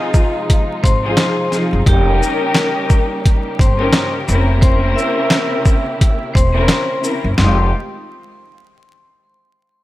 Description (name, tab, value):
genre	hip hop, boom-bap hip-hop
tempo	87 BPM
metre	4/4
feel	swing 58% on 16ths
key	F minor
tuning	A4 = 440 Hz
part	vibraphone with hard mallets	melody	0.0-7.7 s	G4 to E6	-22 LUFS	left 1 dB	high-pass filter, low-pass filter
part	warm studio string section	accompaniment	0.0-7.7 s	F3 to Bb4	-20 LUFS	left 2 dB	high-pass filter, low-pass filter
part	warm studio string section	sustained chords	0.0-7.7 s	C3 to G4	-27 LUFS	right 1 dB	high-pass filter, low-pass filter
part	boom bap sampler-style drum kit	drums	0.1-7.6 s	hi-hat, kick drum, shaker, snare drum	-14 LUFS	equal	none
part	upright bass	bass	0.8-7.7 s	E1 to Ab1	-16 LUFS	equal	none
room	studio ambience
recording	vinyl crackle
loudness	-13 LUFS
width	side -16 dB against mid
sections	0.0-7.4 A section; 7.4-9.8 B section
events	none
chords	0.0 Ab6; 1.9 Eb7/F; 4.3 C7b9/F; 7.4 Fm9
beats	0.48 1.17 | 1.86 2.55 3.24 3.93 | 4.62 5.31 6.00 6.69 | 7.38